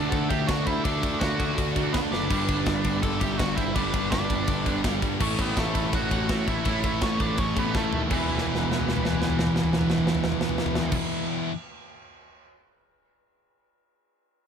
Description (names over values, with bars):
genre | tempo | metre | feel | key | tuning
heavy metal | 165 BPM | 4/4 | straight | E minor | A4 = 439 Hz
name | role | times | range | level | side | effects
nasal lead guitar with a parked wah | melody | 0.0-11.0 s | E3 to A4 | -30 LUFS | right 3 dB | overdrive, ping-pong delay
high-gain lead guitar | second line | 0.0-11.0 s | E4 to F#5 | -38 LUFS | right 3 dB | distortion, ping-pong delay
heavy high-gain guitar | riff | 0.0-11.5 s | E2 to D4 | -32 LUFS | left 14 dB | distortion
high-gain distorted guitar | riff | 0.0-11.5 s | E2 to D4 | -32 LUFS | right 14 dB | distortion
overdriven electric guitar | riff | 0.0-11.5 s | E2 to D4 | -32 LUFS | left 2 dB | none
fuzz picked electric bass | bass | 0.0-11.0 s | E1 to G2 | -31 LUFS | equal | overdrive
tight metal drum kit | drums | 0.1-12.5 s | crash cymbal, kick drum, ride cymbal, snare drum, toms | -28 LUFS | equal | none
room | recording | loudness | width
light reverb | none | -23 LUFS | side -7 dB against mid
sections
0.0-8.1 A section; 8.1-11.0 B section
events
drum fill 2.1, 7.7-8.1, 8.3-10.9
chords
0.0 D; 2.3 G; 5.2 A; 8.1 E5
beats
0.13 0.49 | 0.85 1.22 1.58 1.94 | 2.31 2.67 3.03 3.39 | 3.76 4.12 4.48 4.84 | 5.21 5.57 5.93 6.30 | 6.66 7.02 7.38 7.75 | 8.11 8.47 8.84 9.20 | 9.56 9.92 10.29 10.65